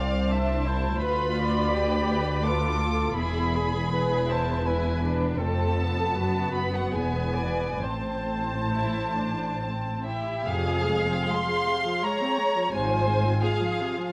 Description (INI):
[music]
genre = classical, slow romantic movement for string orchestra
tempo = 66-86 BPM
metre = 3/4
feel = rubato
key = A minor, F minor from 10.5 s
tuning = A4 = 445 Hz
[part]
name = muted chamber violin section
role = melody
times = 0.0-14.1 s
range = E5 to D6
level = -33 LUFS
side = equal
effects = none
[part]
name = muted chamber violin section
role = second line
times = 0.0-14.1 s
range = B3 to F5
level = -34 LUFS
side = equal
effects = none
[part]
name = muted chamber viola section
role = accompaniment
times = 0.0-14.1 s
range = C3 to E5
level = -34 LUFS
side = equal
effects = none
[part]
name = muted chamber double bass section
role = bass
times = 0.0-13.3 s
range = E1 to D2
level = -32 LUFS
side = equal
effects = none
[part]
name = muted studio cello section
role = bass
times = 0.0-13.3 s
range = C2 to A2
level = -32 LUFS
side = equal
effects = none
[sound]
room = moderate scoring stage reverb, RT60 1.5 s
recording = vinyl crackle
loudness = -26 LUFS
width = mono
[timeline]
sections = 0.0-10.5 A section; 10.5-14.1 B section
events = none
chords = 0.0 Am/C; 1.0 Bdim/D; 3.2 E; 5.4 F; 6.2 B5/F#; 6.9 E7; 7.8 Am; 10.5 Fm; 12.7 Fm/Ab